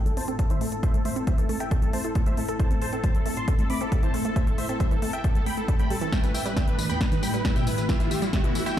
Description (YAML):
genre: uplifting trance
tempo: 136 BPM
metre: 4/4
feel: straight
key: A minor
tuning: A4 = 440 Hz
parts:
  - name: dense compressed supersaw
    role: melody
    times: 0.0-8.7 s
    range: E4 to D6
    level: -32 LUFS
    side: equal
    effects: sidechain pumping, low-pass filter, tape echo
  - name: shimmering ambient pad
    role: sustained chords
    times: 0.0-8.8 s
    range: A2 to E5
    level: -33 LUFS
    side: left 2 dB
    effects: chorus, built-in reverb, phaser, sidechain pumping
  - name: riser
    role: sound effects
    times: 1.9-8.8 s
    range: none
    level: -39 LUFS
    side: left 1 dB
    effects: none
  - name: wide unison pluck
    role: arpeggios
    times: 0.1-8.8 s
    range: E2 to A4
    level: -32 LUFS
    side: right 2 dB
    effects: sidechain pumping, ping-pong delay
  - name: big-room dance drum kit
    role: drums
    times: 0.1-8.8 s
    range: hi-hat, snare drum, tambourine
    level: -34 LUFS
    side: left 1 dB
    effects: overdrive, sidechain pumping on hats, sidechain pumping on perc
  - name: electronic kick drum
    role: drums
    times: 0.4-8.8 s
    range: none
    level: -24 LUFS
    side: equal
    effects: none
room: light reverb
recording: played on a big sound system in a bare room, large studio reverb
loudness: -22 LUFS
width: side -11 dB against mid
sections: 0.0-8.8 A section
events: build-up 0.0-8.8; filter sweep on supersaw synth 0.0-8.8; filter sweep on synth arpeggio sound 0.0-8.8; riser 1.9-8.8; drum fill 6.1-8.8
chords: 0.0 Am; 6.1 Em7